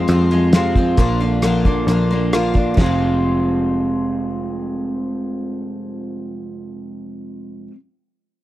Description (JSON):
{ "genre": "folk rock and heartland rock", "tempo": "134 BPM", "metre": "4/4", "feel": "straight", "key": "F dorian", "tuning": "A4 = 440 Hz", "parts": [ { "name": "picked twelve-string acoustic guitar", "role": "accompaniment", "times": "0.0-7.8 s", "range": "F2 to F4", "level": "-23 LUFS", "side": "left 4 dB", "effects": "none" }, { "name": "electric guitar through a small old amp", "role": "riff", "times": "0.0-7.7 s", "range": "F2 to F4", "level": "-22 LUFS", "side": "right 3 dB", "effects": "none" }, { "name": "picked electric bass", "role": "bass", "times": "0.0-7.7 s", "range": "F1 to F2", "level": "-20 LUFS", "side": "equal", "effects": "none" }, { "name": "cloth-damped thuddy drum kit", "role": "drums", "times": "0.1-2.9 s", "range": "crash cymbal, hi-hat, kick drum, rim click, snare drum", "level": "-16 LUFS", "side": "equal", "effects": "none" } ], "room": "studio reverb", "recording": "dry, close 1970s-style studio recording", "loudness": "-16 LUFS", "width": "side -15 dB against mid", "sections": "0.0-2.8 A section; 2.8-6.4 B section", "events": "none", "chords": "0.0 Fm; 1.0 Bb; 2.8 Fm" }